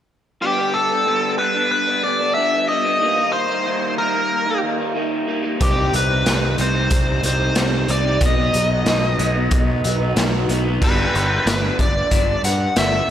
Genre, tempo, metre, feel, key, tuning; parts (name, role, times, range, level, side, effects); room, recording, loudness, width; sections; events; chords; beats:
quiet-loud alternative rock; 92 BPM; 4/4; straight; G major; A4 = 438 Hz
biting lead guitar; melody; 0.4-13.1 s; G4 to F#5; -20 LUFS; left 1 dB; overdrive
electric guitar through a small old amp; arpeggios; 0.4-13.0 s; G2 to Eb4; -23 LUFS; equal; phaser, slapback echo, tape echo
fuzz picked electric bass; bass; 5.6-13.0 s; G1 to G2; -21 LUFS; equal; overdrive
raw garage drum kit; drums; 5.6-12.9 s; crash cymbal, hi-hat, kick drum, snare drum; -20 LUFS; equal
wet lush hall reverb, RT60 1.8 s, small room ambience; big arena sound; -16 LUFS; side -10 dB against mid
0.4-10.8 A section; 10.8-13.1 B section
0.4 G; 3.0 Eb; 5.6 Cm; 8.2 B; 10.8 G
| 0.41 1.06 1.71 2.36 | 3.01 3.66 4.31 4.96 | 5.61 6.26 6.91 7.56 | 8.21 8.86 9.51 10.16 | 10.82 11.47 12.12 12.77